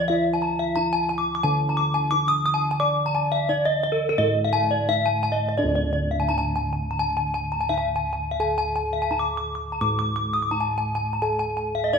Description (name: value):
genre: Balinese gamelan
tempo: 85 BPM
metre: 4/4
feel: straight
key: D pelog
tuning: A4 = 439 Hz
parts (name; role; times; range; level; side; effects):
- gamelan-type bronze metallophone; arpeggios; 0.0-12.0 s; Bb4-40c to Eb6; -23 LUFS; left 2 dB; none
- gamelan-type bossed gongs; bass; 0.0-12.0 s; D2 to D5; -26 LUFS; right 1 dB; none
room: moderate recital hall reverb, RT60 1.6 s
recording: none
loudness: -21 LUFS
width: side -6 dB against mid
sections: 0.0-5.6 A section; 5.6-12.0 B section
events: none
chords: none